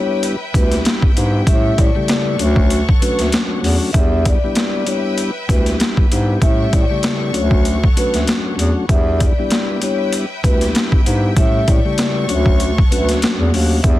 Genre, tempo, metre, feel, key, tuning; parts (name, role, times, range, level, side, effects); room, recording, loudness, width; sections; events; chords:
hip hop, boom-bap hip-hop; 97 BPM; 4/4; swing 55% on 16ths; E dorian; A4 = 439 Hz
vibraphone with soft mallets; melody; 0.0-14.0 s; B4 to E5; -23 LUFS; left 1 dB; digital delay
mellow tonewheel organ; accompaniment; 0.0-14.0 s; C#3 to G4; -21 LUFS; left 2 dB; slow rotary speaker
clear studio string section; sustained chords; 0.0-14.0 s; A4 to C#6; -29 LUFS; left 1 dB
boom bap sampler-style drum kit; drums; 0.2-14.0 s; hi-hat, kick drum, snare drum; -16 LUFS; equal; overdrive
warm bass clarinet; bass; 0.5-14.0 s; D2 to A2; -18 LUFS; equal
little or no reverb; dense, heavily limited modern master, vinyl crackle; -13 LUFS; side -15 dB against mid
0.0-13.8 A section
0.0 Em7; 1.5 A7; 2.4 Dmaj7; 3.9 Em7; 6.4 A7; 7.3 Dmaj7; 8.9 Em7; 11.4 A7; 12.3 Dmaj7